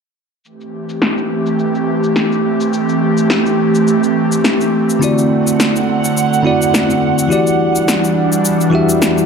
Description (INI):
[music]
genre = sunset chillout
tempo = 105 BPM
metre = 4/4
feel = swing 55% on 16ths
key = A dorian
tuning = A4 = 440 Hz
[part]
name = airy breathy pad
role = sustained chords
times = 0.7-9.3 s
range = D3 to F#5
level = -14 LUFS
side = right 2 dB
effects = chorus
[part]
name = electronic shaker and snare drum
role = drums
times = 0.5-9.3 s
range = none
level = -17 LUFS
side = left 1 dB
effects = overdrive, low-pass filter on perc, low-pass filter on snare, low-pass filter on room
[part]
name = bell-like tine electric piano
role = accompaniment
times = 5.0-9.3 s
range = D3 to E5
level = -15 LUFS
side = moving between left 4 dB and right 3 dB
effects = auto-pan, digital delay
[sound]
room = wet lush hall reverb, RT60 1.6 s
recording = none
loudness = -12 LUFS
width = side -6 dB against mid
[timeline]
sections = 0.4-9.3 A section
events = filter sweep on drum 0.4-9.3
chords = 0.4 Am7; 5.0 D7; 7.3 Em9